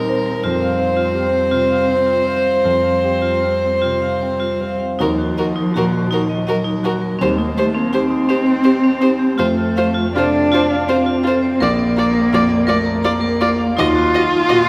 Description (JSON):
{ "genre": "neoclassical piano and strings", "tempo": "76-86 BPM", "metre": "3/4", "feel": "rubato", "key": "unclear", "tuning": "A4 = 442 Hz", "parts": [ { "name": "warm violin", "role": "melody", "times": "0.0-14.6 s", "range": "Bb4 to Eb5", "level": "-22 LUFS", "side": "equal", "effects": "none" }, { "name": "dark cello", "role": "second line", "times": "0.0-14.7 s", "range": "F3 to F4", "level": "-21 LUFS", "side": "equal", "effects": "none" }, { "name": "dark viola", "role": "accompaniment", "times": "0.0-14.6 s", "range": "C4 to G4", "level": "-28 LUFS", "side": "equal", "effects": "none" }, { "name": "warm concert grand piano", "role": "accompaniment", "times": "0.0-14.7 s", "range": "Bb1 to C5", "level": "-26 LUFS", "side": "equal", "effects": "none" }, { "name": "vibraphone with hard mallets", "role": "arpeggios", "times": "0.1-14.7 s", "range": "C4 to Bb5", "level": "-27 LUFS", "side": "equal", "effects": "none" } ], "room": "wet church reverb, RT60 2.9 s", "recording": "recorded in a church or concert hall", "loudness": "-17 LUFS", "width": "mono", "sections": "0.0-5.0 A section; 5.0-14.7 B section", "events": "none", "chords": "0.4 Fsus2; 5.0 Ebmadd9; 7.2 Cm/Eb; 9.4 F; 11.6 Bb; 13.8 Ebmadd9" }